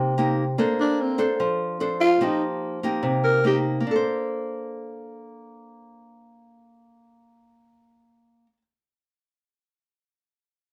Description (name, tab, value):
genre	bossa nova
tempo	147 BPM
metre	4/4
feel	straight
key	Bb major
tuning	A4 = 439 Hz
part	nylon-string guitar	accompaniment	0.0-8.6 s	C3 to C5	-26 LUFS	equal	none
part	growling tenor saxophone	melody	0.8-3.6 s	C4 to Bb4	-23 LUFS	equal	none
room	wet studio reverb, RT60 0.6 s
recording	band playing live in one room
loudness	-23 LUFS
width	mono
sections	0.0-3.8 A section; 3.8-7.1 B section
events	tenor saxophone solo 0.0-3.8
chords	0.0 F9sus4 (rootless); 0.6 Bbmaj9; 2.2 F9sus4; 3.8 Bbmaj9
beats	0.16 | 0.57 0.98 1.39 1.80 | 2.20 2.61 3.02 3.43 | 3.84 4.25 4.66 5.07 | 5.48 5.88 6.29 6.70